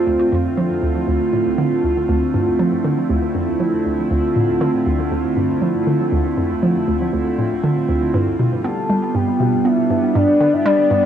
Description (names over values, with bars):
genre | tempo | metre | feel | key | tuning
ambient, sequencer-driven space music | 119 BPM | 4/4 | straight | D dorian | A4 = 440 Hz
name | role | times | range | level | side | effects
evolving wavetable pad | sustained chords | 0.0-11.1 s | D3 to F4 | -18 LUFS | right 1 dB | chorus, built-in reverb, cassette tape
hollow square pluck | riff | 0.1-11.1 s | D2 to B3 | -20 LUFS | equal | chorus, cassette tape, tape echo
soft octave-layered synth lead | melody | 8.6-11.1 s | D5 to A5 | -20 LUFS | left 2 dB | chorus, tremolo, vintage 12-bit sampler grit, cassette tape, tape echo
room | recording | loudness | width
wet booth ambience, RT60 0.3 s | home recording on cassette | -16 LUFS | side -9 dB against mid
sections
0.1-11.1 A section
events
none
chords
0.1 Dm7; 8.1 G